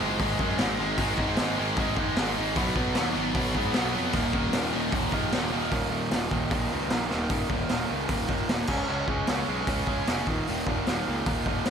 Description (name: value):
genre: punk rock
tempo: 152 BPM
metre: 4/4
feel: straight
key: Eb minor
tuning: A4 = 442 Hz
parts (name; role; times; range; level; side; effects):
- crunchy overdriven guitar; riff; 0.0-11.7 s; Eb2 to Db4; -28 LUFS; right 2 dB; none
- heavy high-gain guitar; riff; 0.0-5.7 s; Eb2 to B3; -32 LUFS; left 2 dB; distortion
- fuzz picked electric bass; bass; 0.0-11.6 s; Eb1 to Ab2; -33 LUFS; left 1 dB; overdrive
- raw garage drum kit; drums; 0.2-11.7 s; crash cymbal, hi-hat, kick drum, snare drum; -29 LUFS; equal; none
room: little or no reverb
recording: none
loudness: -24 LUFS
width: side -7 dB against mid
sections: 0.0-5.7 A section; 5.7-7.3 B section; 7.3-11.7 C section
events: drum fill 7.1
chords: 0.0 Ab5; 2.6 B5; 4.2 Eb5; 8.7 Db5; 10.3 Eb5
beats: 0.20 0.60 | 0.99 1.39 1.78 2.18 | 2.57 2.97 3.36 3.76 | 4.15 4.55 4.94 5.34 | 5.73 6.13 6.52 6.92 | 7.31 7.71 8.10 8.50 | 8.89 9.29 9.69 10.08 | 10.48 10.87 11.27 11.66